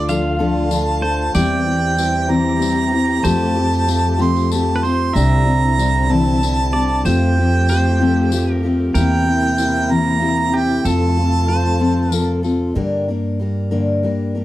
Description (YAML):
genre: acoustic folk duo or small band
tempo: 63 BPM (dotted quarters)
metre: 6/8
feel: straight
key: unclear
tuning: A4 = 440 Hz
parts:
  - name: warm harmonica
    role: melody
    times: 0.0-12.4 s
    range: D5 to C6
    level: -21 LUFS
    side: right 3 dB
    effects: none
  - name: pedal steel guitar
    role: second line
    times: 0.0-12.4 s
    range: G4 to F5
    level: -28 LUFS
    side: right 2 dB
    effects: none
  - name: picked steel-string acoustic guitar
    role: accompaniment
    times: 0.0-14.4 s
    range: G2 to Bb4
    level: -19 LUFS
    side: left 2 dB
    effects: none
  - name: warm chamber string section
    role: sustained chords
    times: 0.0-12.7 s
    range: C3 to G4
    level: -26 LUFS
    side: left 1 dB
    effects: none
  - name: upright bass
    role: bass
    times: 0.0-14.4 s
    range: C2 to G2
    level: -20 LUFS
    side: right 1 dB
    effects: none
  - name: tambourine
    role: percussion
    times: 0.1-12.5 s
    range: none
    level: -31 LUFS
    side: left 14 dB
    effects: none
room: studio ambience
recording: dry, close 1970s-style studio recording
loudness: -14 LUFS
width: side -15 dB against mid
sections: 0.0-12.8 A section; 12.8-14.4 B section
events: none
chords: 0.0 Dm; 1.4 C/E; 3.3 Fadd9; 5.2 Cadd9; 7.0 Fadd9; 8.9 C7/E; 10.8 F; 12.8 Gm